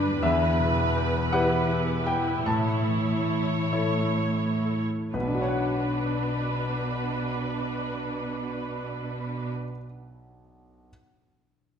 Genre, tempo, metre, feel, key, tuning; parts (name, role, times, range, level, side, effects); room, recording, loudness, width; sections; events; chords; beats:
cinematic, emotional film score for orchestra; 41-55 BPM (dotted quarters); 6/8; rubato; B minor; A4 = 441 Hz
bright concert grand piano; accompaniment; 0.0-10.9 s; B1 to A5; -29 LUFS; left 1 dB
rich studio viola section; accompaniment; 0.0-9.5 s; D4 to C#5; -30 LUFS; right 2 dB
concert harp; arpeggios; 0.0-9.8 s; E2 to F#5; -31 LUFS; left 5 dB
rich studio cello section; bass; 0.0-9.5 s; E2 to B2; -31 LUFS; right 2 dB
wet recital hall reverb, RT60 1.3 s; -24 LUFS; side -7 dB against mid
0.0-5.1 A section; 5.1-10.9 B section
slowing down 0.0-5.1
0.2 Em; 2.5 A; 5.1 Bmadd9
| 0.22 1.32 | 2.46 3.73 | 5.14 6.57 | 8.00 9.44